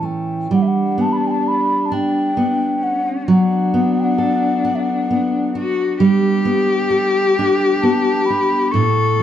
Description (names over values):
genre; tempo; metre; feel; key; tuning
celtic folk, Celtic slow air; 44 BPM (dotted quarters); 6/8; rubato; unclear; A4 = 440 Hz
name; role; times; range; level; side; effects
mellow hollow wooden flute; melody; 0.0-9.2 s; E5 to C#6; -21 LUFS; left 1 dB; none
fingerpicked steel-string acoustic guitar; accompaniment; 0.0-9.2 s; A2 to A4; -18 LUFS; right 2 dB; none
dark cello; second line; 0.5-9.2 s; C#4 to A4; -20 LUFS; left 4 dB; none
room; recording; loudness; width
moderate recital hall reverb, RT60 1.3 s; dark, warm production; -15 LUFS; side -10 dB against mid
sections
0.5-9.2 A section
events
none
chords
0.0 A; 0.5 G; 3.3 D6/F#; 6.0 Gadd9; 8.7 A